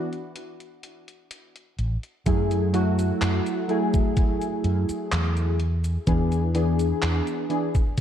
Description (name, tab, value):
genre	vaporwave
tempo	63 BPM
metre	4/4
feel	straight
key	unclear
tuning	A4 = 441 Hz
part	warbly lo-fi synth keys	accompaniment	0.0-7.7 s	E3 to G#4	-25 LUFS	equal	lush chorus, tape echo
part	detuned 8-bit digital drum machine	drums	0.1-8.0 s	cabasa, handclaps, hi-hat	-33 LUFS	equal	vintage 12-bit sampler grit
part	mellow fretless electric bass	bass	1.8-7.2 s	A1 to F#2	-24 LUFS	equal	none
part	electronic kick drum	drums	2.3-8.0 s	none	-22 LUFS	equal	vintage 12-bit sampler grit
room	light reverb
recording	dark, warm production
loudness	-22 LUFS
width	side -10 dB against mid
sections	0.0-2.3 A section; 2.3-8.0 B section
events	none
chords	0.0 N.C.; 2.3 F#m9; 5.6 E7